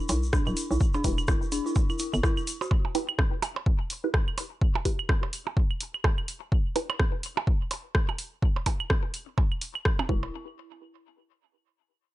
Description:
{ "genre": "minimal techno", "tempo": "126 BPM", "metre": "4/4", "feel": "swing 58% on 16ths", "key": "E minor", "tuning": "A4 = 441 Hz", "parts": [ { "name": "tube shaker", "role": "percussion", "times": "0.0-2.7 s", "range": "none", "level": "-40 LUFS", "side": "left 4 dB", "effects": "none" }, { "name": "dark detuned synth bell", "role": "riff", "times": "0.1-2.6, 10.1-10.3 s", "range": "D4 to F#4", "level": "-33 LUFS", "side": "left 1 dB", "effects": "chorus, sidechain pumping, ping-pong delay" }, { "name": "hollow knocking FM bass", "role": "bass", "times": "0.1-2.2, 10.1-10.3 s", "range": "D1 to B1", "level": "-29 LUFS", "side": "equal", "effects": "sidechain pumping" }, { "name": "punchy analog drum machine", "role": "drums", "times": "0.1-10.0 s", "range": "hi-hat, rim click", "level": "-31 LUFS", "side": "equal", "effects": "none" }, { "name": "percussion blips and claves", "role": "percussion", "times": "0.1-10.3 s", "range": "none", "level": "-33 LUFS", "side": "right 6 dB", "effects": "ping-pong delay" }, { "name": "electronic kick drum", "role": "drums", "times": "0.3-10.2 s", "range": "none", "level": "-25 LUFS", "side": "equal", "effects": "none" }, { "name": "filtered dub chord stab", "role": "stabs", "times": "1.0-10.3 s", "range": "E4 to B4", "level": "-32 LUFS", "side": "right 3 dB", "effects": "phaser, ping-pong delay" } ], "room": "light reverb", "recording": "dark, warm production, nothing above 10.7 kHz", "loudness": "-25 LUFS", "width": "side -16 dB against mid", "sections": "0.0-10.3 A section; 10.3-12.1 B section", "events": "filter sweep on synth stab 0.0-10.3", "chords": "0.0 Em; 10.3 N.C.", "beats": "0.33 | 0.81 1.28 1.76 2.23 | 2.71 3.19 3.66 4.14 | 4.62 5.09 5.57 6.04 | 6.52 7.00 7.47 7.95 | 8.43 8.90 9.38 9.85" }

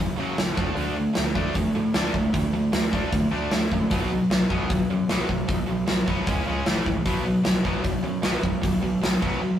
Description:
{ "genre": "punk rock", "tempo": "153 BPM", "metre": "4/4", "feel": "straight", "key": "unclear", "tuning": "A4 = 439 Hz", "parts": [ { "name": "cranked stack guitar", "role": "riff", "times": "0.0-9.6 s", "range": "F#2 to D4", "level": "-28 LUFS", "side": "left 4 dB", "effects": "overdrive" }, { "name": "tight distorted guitar", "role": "riff", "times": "0.0-9.6 s", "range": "F#2 to D4", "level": "-27 LUFS", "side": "right 3 dB", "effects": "distortion" }, { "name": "fuzz picked electric bass", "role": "bass", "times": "0.0-9.4 s", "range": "F#1 to A2", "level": "-31 LUFS", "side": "equal", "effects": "overdrive" }, { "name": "big rock drum kit", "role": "drums", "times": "0.4-9.3 s", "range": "hi-hat, kick drum, snare drum", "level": "-25 LUFS", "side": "equal", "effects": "none" } ], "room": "moderate stone room reverb, RT60 1.0 s", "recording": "rough rehearsal-room recording", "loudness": "-21 LUFS", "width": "side -10 dB against mid", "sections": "0.0-9.6 A section", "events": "none", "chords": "0.0 F#5; 0.6 D5; 3.9 B5; 6.3 C#5; 6.7 A5; 7.1 B5", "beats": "0.37 | 0.77 1.16 1.55 1.95 | 2.34 2.73 3.12 3.52 | 3.91 4.30 4.70 5.09 | 5.48 5.88 6.27 6.66 | 7.05 7.45 7.84 8.23 | 8.63 9.02 9.41" }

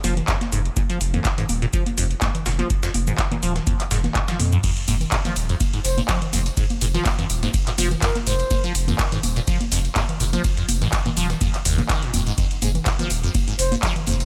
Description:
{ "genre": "acid house", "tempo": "124 BPM", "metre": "4/4", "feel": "swing 54% on 16ths", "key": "F minor", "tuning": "A4 = 442 Hz", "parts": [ { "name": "liquid acid bass", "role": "riff", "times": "0.0-14.1 s", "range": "Eb2 to F3", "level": "-29 LUFS", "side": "equal", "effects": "phaser, tube saturation, lush chorus, sidechain pumping, tape echo" }, { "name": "saturated sub bass", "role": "bass", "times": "0.0-14.2 s", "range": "Eb1 to F2", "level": "-26 LUFS", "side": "equal", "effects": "tube saturation, sidechain pumping" }, { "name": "booming analog drum machine", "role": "drums", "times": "0.0-14.2 s", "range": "congas, crash cymbal, handclaps, hi-hat, ride cymbal, toms", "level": "-28 LUFS", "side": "equal", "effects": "studio reverb" }, { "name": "breakbeat sampler-style drum kit", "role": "drums", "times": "0.0-14.2 s", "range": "hi-hat, shaker, snare drum", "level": "-36 LUFS", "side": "equal", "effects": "high-pass filter on hats, studio reverb, high-pass filter on snare, high-pass filter on perc" }, { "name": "electronic kick drum", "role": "drums", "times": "0.3-13.9 s", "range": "none", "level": "-26 LUFS", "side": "equal", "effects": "studio reverb" }, { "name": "tambourine", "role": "percussion", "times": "4.6-14.2 s", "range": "none", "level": "-37 LUFS", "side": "equal", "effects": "none" }, { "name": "breathy mellow silver concert flute", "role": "melody", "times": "5.8-8.6, 13.6-13.7 s", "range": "Bb4 to C5", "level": "-32 LUFS", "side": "equal", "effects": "tape echo" } ], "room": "little or no reverb", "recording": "none", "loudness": "-22 LUFS", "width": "mono", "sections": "0.0-14.2 A section", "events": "drum fill 4.3-4.6", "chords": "none", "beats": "0.28 | 0.77 1.25 1.73 2.22 | 2.70 3.19 3.67 4.15 | 4.64 5.12 5.61 6.09 | 6.57 7.06 7.54 8.02 | 8.51 8.99 9.48 9.96 | 10.44 10.93 11.41 11.89 | 12.38 12.86 13.35 13.83" }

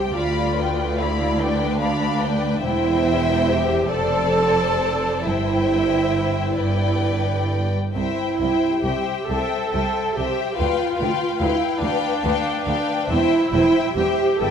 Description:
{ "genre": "classical, slow romantic movement for string orchestra", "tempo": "44-49 BPM (dotted quarters)", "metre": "6/8", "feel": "rubato", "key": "C major", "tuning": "A4 = 440 Hz", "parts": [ { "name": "warm studio violin section", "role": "melody", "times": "0.0-14.5 s", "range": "G5 to B5", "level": "-28 LUFS", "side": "left 7 dB", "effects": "none" }, { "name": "rich studio violin section", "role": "second line", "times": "0.0-14.5 s", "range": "B4 to G5", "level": "-25 LUFS", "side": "left 3 dB", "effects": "none" }, { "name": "dark studio viola section", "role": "accompaniment", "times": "0.0-14.5 s", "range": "D4 to A4", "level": "-22 LUFS", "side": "right 2 dB", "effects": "none" }, { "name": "rich studio cello section", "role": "bass", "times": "0.0-14.5 s", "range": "C2 to G2", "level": "-26 LUFS", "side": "right 1 dB", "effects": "none" }, { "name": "warm studio double bass section", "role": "bass", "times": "0.0-14.5 s", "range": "E1 to D2", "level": "-28 LUFS", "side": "right 3 dB", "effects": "none" } ], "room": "moderate concert hall reverb, RT60 2.3 s", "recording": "none", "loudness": "-18 LUFS", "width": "side -7 dB against mid", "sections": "0.0-14.5 A section", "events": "none", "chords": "0.2 G7/D; 2.6 C/E; 3.9 Dm7/F; 5.3 C/G; 8.0 C; 10.6 G7/D; 13.1 C/E", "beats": "| 0.17 1.41 | 2.65 3.92 | 5.26 6.60 | 7.96 9.29 | 10.59 11.83 | 13.10 14.41" }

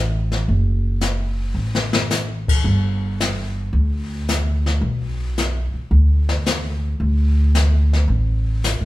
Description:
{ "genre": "jazz piano trio", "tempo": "110 BPM", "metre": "4/4", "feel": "swing 69% on 8ths", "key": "D major", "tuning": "A4 = 437 Hz", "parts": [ { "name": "upright bass", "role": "bass", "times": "0.0-8.8 s", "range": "F#1 to D2", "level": "-18 LUFS", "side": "equal", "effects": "none" }, { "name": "jazz brush drum kit", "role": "drums", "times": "0.3-8.8 s", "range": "brushed snare drum, crash cymbal, hi-hat, kick drum, snare drum", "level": "-23 LUFS", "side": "left 2 dB", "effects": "none" } ], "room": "moderate large studio reverb, RT60 1.2 s", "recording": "band playing live in one room", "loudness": "-17 LUFS", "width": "side -17 dB against mid", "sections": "0.0-8.8 A section", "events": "drum fill 1.6-2.1", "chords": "none", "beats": "| 0.48 1.02 1.57 2.11 | 2.66 3.20 3.75 4.29 | 4.83 5.38 5.92 6.46 | 7.01 7.55 8.09 8.63" }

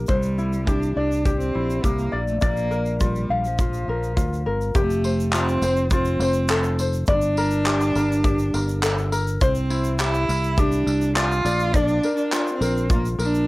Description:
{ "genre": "acoustic pop", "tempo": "103 BPM", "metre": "4/4", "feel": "straight", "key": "F major", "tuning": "A4 = 443 Hz", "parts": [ { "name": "ukulele", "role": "accompaniment", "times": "0.0-13.5 s", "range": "E4 to F5", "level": "-25 LUFS", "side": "left 3 dB", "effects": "cassette tape" }, { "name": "fingered electric bass", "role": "bass", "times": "0.0-13.5 s", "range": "F1 to D2", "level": "-24 LUFS", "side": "equal", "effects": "none" }, { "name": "warm cello", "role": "melody", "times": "0.1-13.5 s", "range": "F3 to F4", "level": "-25 LUFS", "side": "right 2 dB", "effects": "analog delay" }, { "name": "modern studio drum kit", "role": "drums", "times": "0.1-13.3 s", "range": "handclaps, kick drum, tambourine", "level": "-24 LUFS", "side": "equal", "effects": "cassette tape" }, { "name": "tube shaker", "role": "percussion", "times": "0.1-13.5 s", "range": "none", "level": "-42 LUFS", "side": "right 4 dB", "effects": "none" } ], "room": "little or no reverb", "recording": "home recording on cassette", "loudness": "-19 LUFS", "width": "side -20 dB against mid", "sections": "0.0-4.8 A section; 4.8-13.5 B section", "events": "none", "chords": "0.1 Cadd9; 2.1 Bb; 4.8 Fadd9; 7.1 Gmadd9; 9.4 Cadd9; 11.4 Bb", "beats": "| 0.09 0.67 1.25 1.84 | 2.42 3.00 3.59 4.17 | 4.75 5.33 5.92 6.50 | 7.08 7.66 8.25 8.83 | 9.41 9.99 10.57 11.16 | 11.74 12.32 12.90" }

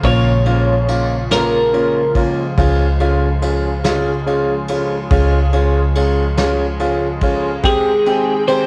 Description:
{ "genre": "six-eight pop ballad", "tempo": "47 BPM (dotted quarters)", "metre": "6/8", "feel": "straight", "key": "unclear", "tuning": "A4 = 441 Hz", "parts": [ { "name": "twelve-string electric guitar", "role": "melody", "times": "0.0-2.2, 7.7-8.7 s", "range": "Ab4 to Db5", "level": "-19 LUFS", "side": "equal", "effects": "cassette tape" }, { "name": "clear grand piano", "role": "accompaniment", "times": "0.0-8.7 s", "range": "Ab3 to G4", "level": "-21 LUFS", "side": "equal", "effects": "cassette tape" }, { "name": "chorused pulse-width pad", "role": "sustained chords", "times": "0.0-8.7 s", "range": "Db3 to G5", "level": "-27 LUFS", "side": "equal", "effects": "cassette tape" }, { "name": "vintage muted fingered electric bass", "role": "bass", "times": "0.0-8.7 s", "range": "Ab1 to Db2", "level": "-20 LUFS", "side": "equal", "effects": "none" }, { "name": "soft brush drum kit", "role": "drums", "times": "0.0-8.7 s", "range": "kick drum, ride cymbal, snare drum", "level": "-26 LUFS", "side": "equal", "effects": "cassette tape" } ], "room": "moderate studio reverb, RT60 0.5 s", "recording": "home recording on cassette", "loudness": "-16 LUFS", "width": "mono", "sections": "0.0-8.7 A section", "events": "none", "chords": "0.0 Bbm; 2.6 Db; 7.6 Abmaj7", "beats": "| 0.04 1.31 | 2.58 3.85 | 5.11 6.38 | 7.64" }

